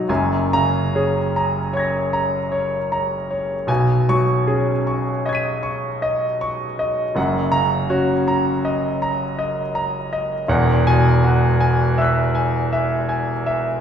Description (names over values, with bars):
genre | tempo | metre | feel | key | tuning
classical, impressionist solo piano | 46-55 BPM (dotted quarters) | 9/8 | rubato | F# mixolydian | A4 = 440 Hz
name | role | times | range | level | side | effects
clear concert grand piano | solo | 0.0-13.8 s | E1 to D#7 | -17 LUFS | equal | none
room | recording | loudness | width
wet recital hall reverb, RT60 1.4 s | recorded in a church or concert hall | -17 LUFS | side -8 dB against mid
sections
0.1-13.8 A section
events
none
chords
0.1 F#add9; 3.7 B69; 7.2 F#6; 10.5 Eadd9